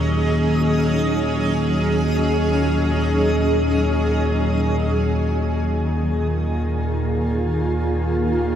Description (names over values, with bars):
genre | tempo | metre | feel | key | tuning
dark ambient drone | free time | none | none | Eb minor | A4 = 444 Hz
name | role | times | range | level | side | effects
granular cloud pad | sustained chords | 0.0-8.6 s | Eb3 to Ab4 | -21 LUFS | equal | built-in reverb, shimmer reverb
analog drone | drone | 0.0-8.6 s | Eb2 to Bb2 | -21 LUFS | equal | chorus
backwards swelling texture | texture | 0.0-4.9 s | Eb4 to Eb5 | -30 LUFS | right 1 dB | built-in reverb, shimmer reverb
room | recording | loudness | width
wet huge ambient reverb, RT60 7.2 s | none | -18 LUFS | side -9 dB against mid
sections
0.0-4.9 A section; 4.9-8.6 B section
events
none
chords
0.0 Gb5; 4.9 Eb5